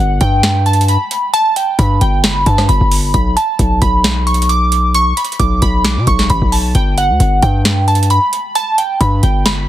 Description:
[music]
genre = hip hop, trap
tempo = 133 BPM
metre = 4/4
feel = half-time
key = unclear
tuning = A4 = 438 Hz
[part]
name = glassy digital keys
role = melody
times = 0.0-9.7 s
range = F#5 to D6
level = -15 LUFS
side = right 1 dB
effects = chorus, ping-pong delay
[part]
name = distorted 808-style bass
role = bass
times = 0.0-9.7 s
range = G1 to B2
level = -14 LUFS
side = equal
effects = distortion
[part]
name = booming analog drum machine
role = drums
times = 0.2-9.6 s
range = hi-hat, kick drum, rim click, snare drum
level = -16 LUFS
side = equal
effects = overdrive
[sound]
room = digital ambience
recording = heavily compressed radio sound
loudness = -11 LUFS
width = side -13 dB against mid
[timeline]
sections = 0.0-9.7 A section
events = none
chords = 0.0 G; 3.1 Bm; 6.7 G

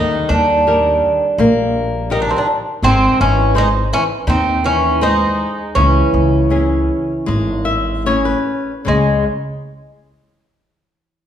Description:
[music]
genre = fado-style ballad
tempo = 73-84 BPM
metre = 4/4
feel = rubato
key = unclear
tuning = A4 = 438 Hz
[part]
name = Irish bouzouki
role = melody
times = 0.0-9.2 s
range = G#3 to D#4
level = -17 LUFS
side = equal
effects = none
[part]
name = fingerpicked twelve-string acoustic guitar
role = second line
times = 0.0-9.2 s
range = D#3 to C#4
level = -22 LUFS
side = right 2 dB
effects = none
[part]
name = flamenco guitar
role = accompaniment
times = 0.0-9.2 s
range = C#3 to E5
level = -20 LUFS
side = left 2 dB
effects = none
[part]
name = upright bass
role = bass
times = 0.0-9.2 s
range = G#1 to D#2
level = -18 LUFS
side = equal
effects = none
[sound]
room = wet recital hall reverb, RT60 1.3 s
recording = recorded in a church or concert hall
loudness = -13 LUFS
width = side -9 dB against mid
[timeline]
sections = 0.0-8.9 A section; 8.9-11.3 B section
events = nylon-string guitar fill 7.3-8.9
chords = 0.0 D#; 2.8 G#; 5.8 C#m; 8.9 C#5

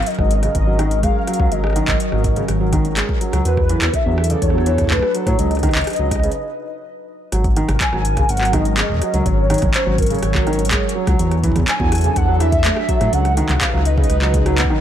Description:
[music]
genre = IDM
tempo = 124 BPM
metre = 4/4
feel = straight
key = unclear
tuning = A4 = 440 Hz
[part]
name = warbly nostalgic lead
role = melody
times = 0.0-14.8 s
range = A#4 to G#5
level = -22 LUFS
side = equal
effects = ensemble chorus, digital delay
[part]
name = warbly tape-like pad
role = sustained chords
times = 0.0-14.8 s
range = F#3 to C#5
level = -25 LUFS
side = equal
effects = chorus, built-in reverb, phaser
[part]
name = dark detuned saw bass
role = bass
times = 0.0-14.6 s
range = G#1 to A2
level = -19 LUFS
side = equal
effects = none
[part]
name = electro analog drum machine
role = drums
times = 0.0-14.7 s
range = handclaps, hi-hat, rim click, toms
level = -23 LUFS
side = equal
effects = overdrive, digital delay
[part]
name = felt-muted upright piano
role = arpeggios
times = 0.2-14.7 s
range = C#3 to B3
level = -24 LUFS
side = right 2 dB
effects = digital delay
[part]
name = electronic kick drum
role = drums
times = 0.2-14.7 s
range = none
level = -21 LUFS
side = equal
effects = none
[sound]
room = digital ambience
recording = none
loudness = -15 LUFS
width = side -10 dB against mid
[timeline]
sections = 0.0-7.3 A section; 7.3-14.8 B section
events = break 6.4-7.3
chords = 0.0 G#9sus4; 3.5 E9sus4; 5.4 C#9sus4; 7.3 G#9sus4; 11.2 E9sus4; 13.1 C#9sus4

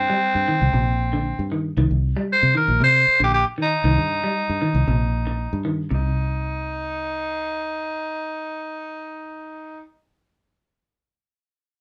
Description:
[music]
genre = afrobeat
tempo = 116 BPM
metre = 4/4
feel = straight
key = C minor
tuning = A4 = 440 Hz
[part]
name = raspy tenor saxophone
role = melody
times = 0.0-9.8 s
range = C4 to C5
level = -24 LUFS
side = equal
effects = none
[part]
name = fingered electric bass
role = bass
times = 0.0-9.8 s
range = Bb1 to C3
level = -24 LUFS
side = equal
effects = none
[part]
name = semi-hollow electric guitar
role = arpeggios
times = 0.1-6.1 s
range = C3 to G3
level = -28 LUFS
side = equal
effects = none
[sound]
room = moderate studio ambience, RT60 0.5 s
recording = band playing live in one room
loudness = -21 LUFS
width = mono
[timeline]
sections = 0.0-5.9 A section; 5.9-10.1 B section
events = none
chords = 0.0 Cm7; 5.9 Cm

